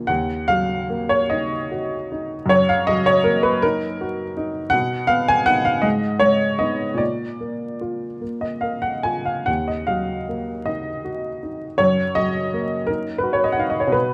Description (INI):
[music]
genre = classical, romantic nocturne for solo piano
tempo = 47-57 BPM (dotted quarters)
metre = 6/8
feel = rubato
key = Eb minor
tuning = A4 = 443 Hz
[part]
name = warm upright piano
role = solo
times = 0.0-14.1 s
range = Bb1 to G#5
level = -21 LUFS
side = equal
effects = none
[sound]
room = moderate recital hall reverb, RT60 1.5 s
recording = close, detailed microphones, vinyl crackle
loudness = -21 LUFS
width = mono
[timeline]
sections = 0.1-14.1 A section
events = none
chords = 0.1 Ebm; 2.5 Ebm/Gb; 4.7 B6; 5.8 Abm; 7.0 Bb; 9.5 Ebm; 11.8 Ebm/Gb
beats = | 0.09 1.30 | 2.50 3.63 | 4.73 5.85 | 7.00 8.21 | 9.47 10.66 | 11.80 12.88 | 13.94